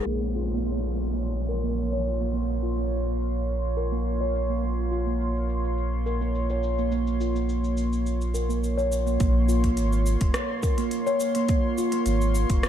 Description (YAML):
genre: organic downtempo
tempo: 105 BPM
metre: 4/4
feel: straight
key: Bb minor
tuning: A4 = 441 Hz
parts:
  - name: warm analog pad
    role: sustained chords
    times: 0.0-12.7 s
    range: Bb3 to C6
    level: -32 LUFS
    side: left 1 dB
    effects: chorus, sidechain pumping
  - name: steel tongue drum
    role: arpeggios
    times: 0.0-12.0 s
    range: Bb3 to Db5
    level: -28 LUFS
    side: right 2 dB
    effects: low-pass filter, ping-pong delay
  - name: warm sub bass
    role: bass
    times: 0.1-12.7 s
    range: F1 to Bb1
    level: -26 LUFS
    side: equal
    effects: sidechain pumping
  - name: organic electronic drum kit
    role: drums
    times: 0.1-12.7 s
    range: hi-hat, rim click, shaker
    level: -35 LUFS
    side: equal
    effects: overdrive, low-pass filter on hats, low-pass filter on perc, low-pass filter on snare, low-pass filter on room
  - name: downlifter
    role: sound effects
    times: 0.1-4.6 s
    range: none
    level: -37 LUFS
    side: right 1 dB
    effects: none
  - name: electronic kick drum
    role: drums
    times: 9.2-12.6 s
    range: none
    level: -24 LUFS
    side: equal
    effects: none
room: light reverb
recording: dark, warm production, low-pass filter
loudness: -23 LUFS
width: side -10 dB against mid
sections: 0.1-9.2 A section; 9.2-12.7 B section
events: filter sweep on drum 0.1-9.2; filter sweep on steel tongue drum 0.1-9.2; filter sweep 0.1-9.2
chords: 0.1 Bbm